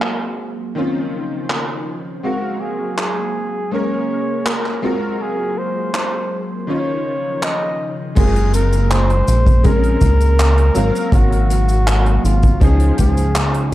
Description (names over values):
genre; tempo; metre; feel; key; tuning
vaporwave; 81 BPM; 4/4; straight; Db major; A4 = 440 Hz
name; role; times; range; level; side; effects
bright electric grand piano; accompaniment; 0.0-13.7 s; Eb3 to F5; -23 LUFS; left 1 dB; ensemble chorus
warbly tape-like pad; sustained chords; 0.0-13.7 s; Db3 to F5; -27 LUFS; right 2 dB; chorus, built-in reverb
modern studio drum kit; drums; 0.0-13.7 s; cabasa, crash cymbal, handclaps, hi-hat; -24 LUFS; equal; low-pass filter on hats, low-pass filter on cymbals, low-pass filter on perc, low-pass filter on snare, low-pass filter on room
warm flugelhorn; melody; 2.2-13.7 s; F4 to Eb5; -22 LUFS; equal; vintage 12-bit sampler grit, tape echo
chorused synth bass; bass; 8.2-13.7 s; Gb1 to Db2; -14 LUFS; equal; none
kick drum; drums; 8.2-13.1 s; none; -15 LUFS; equal; none
room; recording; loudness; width
light reverb, studio reverb; dark, warm production; -15 LUFS; side -15 dB against mid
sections
0.0-8.2 A section; 8.2-13.7 B section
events
none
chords
0.0 Ab13; 0.8 Dbmaj9; 2.2 Gbmaj9#11; 3.7 Bbm7; 4.8 Ab13; 6.7 Dbadd9; 8.2 Gbmaj9#11; 9.6 Bbm9; 10.8 Ab13; 12.6 Dbmaj9